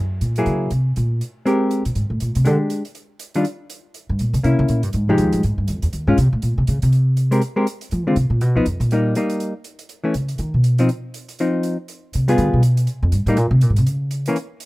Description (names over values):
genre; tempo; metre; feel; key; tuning
jazz, small-group swing and bop; 242 BPM; 4/4; swing 59% on 8ths; unclear; A4 = 440 Hz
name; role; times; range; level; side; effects
upright bass; bass; 0.0-14.3 s; C2 to F3; -17 LUFS; equal; none
hi-hat; drums; 0.2-14.7 s; none; -38 LUFS; right 4 dB; none
hollow-body jazz guitar; accompaniment; 0.4-14.4 s; D3 to Bb4; -19 LUFS; left 1 dB; none
room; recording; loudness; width
little or no reverb; rough home demo mix; -17 LUFS; side -20 dB against mid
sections
0.0-6.9 A section; 6.9-14.7 A section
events
upright bass solo 0.0-14.7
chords
0.0 Gb9; 1.0 Abmaj9; 2.0 Abadd9; 2.5 Dsus4; 2.9 Ebmaj9; 3.9 C7b9; 4.9 Fm9; 5.9 Eb13sus4; 6.4 Bbmadd9; 6.9 Abmaj9; 7.9 Dm7b5; 8.4 Dm6; 8.9 Eb/Bb; 9.9 Dbm; 10.4 B; 10.9 Cmadd11/F; 11.9 G7b9; 12.9 C7(no3); 13.9 N.C.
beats
0.21 0.46 0.71 | 0.96 1.21 1.46 1.71 | 1.95 2.20 2.45 2.70 | 2.95 3.20 3.45 3.69 | 3.94 4.19 4.44 4.69 | 4.94 5.18 5.43 5.68 | 5.93 6.18 6.42 6.67 | 6.92 7.17 7.42 7.67 | 7.91 8.16 8.41 8.66 | 8.91 9.16 9.40 9.65 | 9.90 10.15 10.40 10.64 | 10.89 11.14 11.39 11.64 | 11.88 12.13 12.38 12.63 | 12.88 13.12 13.37 13.62 | 13.87 14.11 14.36 14.61